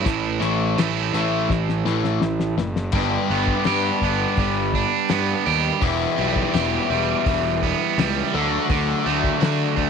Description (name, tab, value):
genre	classic rock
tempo	83 BPM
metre	4/4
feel	straight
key	unclear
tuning	A4 = 440 Hz
part	overdriven semi-hollow guitar	riff	0.0-9.9 s	E2 to G4	-23 LUFS	right 13 dB	none
part	fuzz picked electric bass	bass	0.0-9.9 s	E1 to D3	-25 LUFS	equal	overdrive
part	overdriven electric guitar	riff	0.1-9.9 s	A2 to G4	-24 LUFS	left 12 dB	none
part	cloth-damped thuddy drum kit	drums	0.1-9.9 s	crash cymbal, hi-hat, kick drum, snare drum	-26 LUFS	left 2 dB	none
room	light reverb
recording	1960s-style stereo with parts hard left and right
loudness	-19 LUFS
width	side -6 dB against mid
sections	0.0-2.9 A section; 2.9-9.9 B section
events	drum fill 1.5-2.9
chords	0.0 A; 2.9 G; 5.8 Em; 8.3 D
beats	| 0.06 0.78 1.50 2.22 | 2.94 3.66 4.38 5.11 | 5.83 6.54 7.26 7.98 | 8.70 9.42